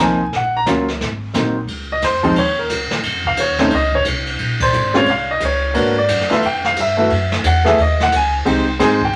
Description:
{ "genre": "jazz piano trio", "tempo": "177 BPM", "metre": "4/4", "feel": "swing 63% on 8ths", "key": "Db major", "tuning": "A4 = 440 Hz", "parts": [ { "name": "warm baby grand piano", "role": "melody", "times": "0.0-9.2 s", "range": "F3 to Bb5", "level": "-18 LUFS", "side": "equal", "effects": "none" }, { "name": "upright bass", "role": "bass", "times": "0.0-9.2 s", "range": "Ab1 to Ab2", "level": "-25 LUFS", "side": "equal", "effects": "none" }, { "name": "jazz brush drum kit", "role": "drums", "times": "0.3-9.2 s", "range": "brushed snare drum, crash cymbal, hi-hat, kick drum, ride cymbal, snare drum", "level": "-24 LUFS", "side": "equal", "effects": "none" } ], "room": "moderate studio reverb, RT60 0.6 s", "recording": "vinyl crackle", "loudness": "-17 LUFS", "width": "mono", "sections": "0.0-1.7 A section; 1.7-9.2 B section", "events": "band accent 4.6", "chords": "0.3 Bbm; 1.0 Ab9; 1.7 Dbmaj9; 3.0 F7(no3); 4.4 Bbm9; 5.8 Abm7b5; 6.4 Fmaj7sus2; 7.1 Gb7sus2; 8.5 Abmaj7" }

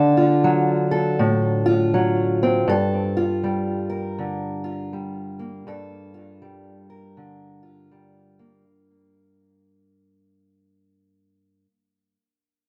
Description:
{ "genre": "blues", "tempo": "80 BPM", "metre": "4/4", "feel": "swing 62% on 8ths", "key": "G minor", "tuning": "A4 = 438 Hz", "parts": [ { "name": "fingerpicked steel-string acoustic guitar", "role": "solo", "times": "0.0-11.7 s", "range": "G2 to Bb4", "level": "-22 LUFS", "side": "equal", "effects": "analog delay" } ], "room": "moderate studio ambience, RT60 0.5 s", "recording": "none", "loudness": "-21 LUFS", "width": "mono", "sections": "0.0-8.7 A section", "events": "fade-out 0.0-8.7", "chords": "0.0 D(#9); 2.7 Gm9" }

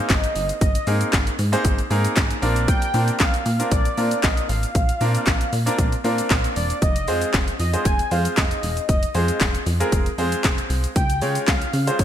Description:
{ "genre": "dance-pop", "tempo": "116 BPM", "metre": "4/4", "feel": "straight", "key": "unclear", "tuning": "A4 = 440 Hz", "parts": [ { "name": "warm velvety synth lead", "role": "melody", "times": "0.0-12.0 s", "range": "Db5 to Ab5", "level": "-27 LUFS", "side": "equal", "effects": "chorus, ping-pong delay" }, { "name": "bright concert grand piano", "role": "accompaniment", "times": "0.0-12.0 s", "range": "Ab3 to Db5", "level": "-25 LUFS", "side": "equal", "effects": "sidechain pumping" }, { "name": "downlifter", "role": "sound effects", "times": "0.0-2.7 s", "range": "none", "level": "-44 LUFS", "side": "equal", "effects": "none" }, { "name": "plucky analog bass", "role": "bass", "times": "0.1-12.0 s", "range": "Fb1 to Db3", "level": "-23 LUFS", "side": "equal", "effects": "sidechain pumping" }, { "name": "house drum kit", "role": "drums", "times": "0.1-12.0 s", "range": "handclaps, hi-hat, kick drum, shaker, snare drum", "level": "-22 LUFS", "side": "equal", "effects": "overdrive" }, { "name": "group handclap", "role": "percussion", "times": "0.1-11.6 s", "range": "none", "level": "-36 LUFS", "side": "left 5 dB", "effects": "none" } ], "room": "light reverb, digital ambience", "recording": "bright 1980s-style digital production", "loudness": "-18 LUFS", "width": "side -10 dB against mid", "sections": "0.0-12.0 A section", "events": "none", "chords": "0.0 Abadd9; 2.4 Bbadd9; 6.8 Fm; 11.0 Db" }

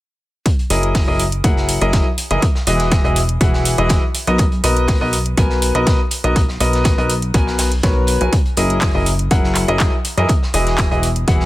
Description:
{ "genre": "piano house", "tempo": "122 BPM", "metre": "4/4", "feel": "straight", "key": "B major", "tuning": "A4 = 440 Hz", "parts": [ { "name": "crunchy breakbeat drum kit", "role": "drums", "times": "0.5-11.5 s", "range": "hi-hat, snare drum", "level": "-29 LUFS", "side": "equal", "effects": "high-pass filter on hats, high-pass filter on snare, high-pass filter on room" }, { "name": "electronic kick drum", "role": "drums", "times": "0.5-11.4 s", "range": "none", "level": "-17 LUFS", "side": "equal", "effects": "none" }, { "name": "garage drum kit", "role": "drums", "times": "0.5-11.4 s", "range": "handclaps, hi-hat", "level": "-22 LUFS", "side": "right 1 dB", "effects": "none" }, { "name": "clear grand piano", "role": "riff", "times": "0.7-11.5 s", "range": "E3 to G#5", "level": "-19 LUFS", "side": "left 1 dB", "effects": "sidechain pumping, dub echo" }, { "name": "plucky analog bass", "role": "bass", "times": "0.7-11.5 s", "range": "E1 to F#2", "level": "-19 LUFS", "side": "equal", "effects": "sidechain pumping" } ], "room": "light reverb, small room ambience", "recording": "none", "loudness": "-14 LUFS", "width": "side -16 dB against mid", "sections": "0.5-11.5 A section", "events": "none", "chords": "0.5 F#13; 2.4 Emaj9; 4.1 Bmaj7; 8.3 F#13; 10.3 Emaj9" }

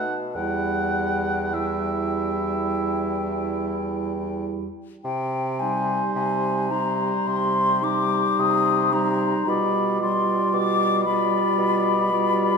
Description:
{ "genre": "classical, slow romantic movement for wind quintet", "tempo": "50-58 BPM", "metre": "4/4", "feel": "rubato", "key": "E minor, C minor from 5.0 s", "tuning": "A4 = 440 Hz", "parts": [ { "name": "mellow hollow silver concert flute", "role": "melody", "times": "0.0-12.6 s", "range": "G5 to Eb6", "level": "-24 LUFS", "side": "left 5 dB", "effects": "none" }, { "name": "warm oboe", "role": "second line", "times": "0.0-12.6 s", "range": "C5 to F#5", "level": "-29 LUFS", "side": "right 1 dB", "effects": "none" }, { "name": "clear French horn", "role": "accompaniment", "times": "0.0-12.6 s", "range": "G3", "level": "-28 LUFS", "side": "equal", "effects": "none" }, { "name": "mellow clarinet", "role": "accompaniment", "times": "0.0-12.6 s", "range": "Eb4 to F4", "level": "-29 LUFS", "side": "right 7 dB", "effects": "none" }, { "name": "clear bassoon", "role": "bass", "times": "0.0-12.5 s", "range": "E2 to C3", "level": "-28 LUFS", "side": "right 3 dB", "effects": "none" } ], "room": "wet recital hall reverb, RT60 1.6 s", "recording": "none", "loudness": "-21 LUFS", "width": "side -5 dB against mid", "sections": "0.0-5.0 A section; 5.0-12.6 B section", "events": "none", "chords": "0.4 Em; 5.0 Cm; 9.5 G7/B" }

